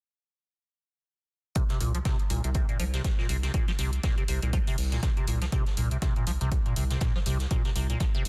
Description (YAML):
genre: acid house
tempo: 121 BPM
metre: 4/4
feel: swing 57% on 16ths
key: unclear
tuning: A4 = 440 Hz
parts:
  - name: liquid acid bass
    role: riff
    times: 1.6-8.2 s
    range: Bb2 to F3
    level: -35 LUFS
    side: equal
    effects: phaser, tube saturation, subtle chorus, tape echo
  - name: electronic hi-hat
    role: drums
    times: 1.6-8.3 s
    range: none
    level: -41 LUFS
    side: equal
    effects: none
  - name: electronic kick drum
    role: drums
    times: 1.6-8.1 s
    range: none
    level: -30 LUFS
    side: equal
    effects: none
  - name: jazz brush drum kit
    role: drums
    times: 1.6-8.3 s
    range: hi-hat, snare drum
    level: -46 LUFS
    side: equal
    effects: sidechain pumping on hats, high-pass filter on hats, soft clipping on snare, high-pass filter on snare, high-pass filter on room
  - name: round analog bass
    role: bass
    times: 1.8-8.3 s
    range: C2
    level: -31 LUFS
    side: equal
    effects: sidechain pumping
room: small room reverb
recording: dense, heavily limited modern master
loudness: -28 LUFS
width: mono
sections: 1.6-8.3 A section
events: none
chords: 1.6 C5